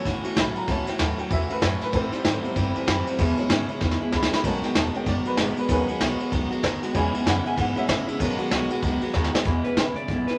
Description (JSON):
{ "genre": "rockabilly", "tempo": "191 BPM", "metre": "4/4", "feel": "swing 61% on 8ths", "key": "E major", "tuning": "A4 = 440 Hz", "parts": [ { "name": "honky-tonk upright piano", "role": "accompaniment", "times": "0.0-8.7 s", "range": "D#3 to B5", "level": "-32 LUFS", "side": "equal", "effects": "none" }, { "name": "picked steel-string acoustic guitar", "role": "accompaniment", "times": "0.0-10.4 s", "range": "E2 to F#4", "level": "-32 LUFS", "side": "equal", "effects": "none" }, { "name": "electric guitar through a small old amp", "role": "riff", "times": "0.0-10.4 s", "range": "E2 to G#3", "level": "-32 LUFS", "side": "equal", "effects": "none" }, { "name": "upright bass", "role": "bass", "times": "0.1-10.3 s", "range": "E1 to B2", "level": "-32 LUFS", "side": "equal", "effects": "none" }, { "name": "vintage brush drum kit", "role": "drums", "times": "0.1-10.3 s", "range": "hi-hat, kick drum, ride cymbal, snare drum", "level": "-28 LUFS", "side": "equal", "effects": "none" }, { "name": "electric guitar through a small old amp", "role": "melody", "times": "9.6-10.4 s", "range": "B4 to D5", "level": "-31 LUFS", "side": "equal", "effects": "none" } ], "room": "moderate studio reverb, RT60 0.6 s", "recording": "none", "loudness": "-24 LUFS", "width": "mono", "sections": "0.0-9.5 A section", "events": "honky-tonk piano solo 0.0-9.5; drum fill 3.8-4.4, 9.1-9.5", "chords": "0.0 E5; 1.9 Am7; 3.2 E6; 4.4 B6; 6.9 E6; 8.2 B6; 9.5 E6" }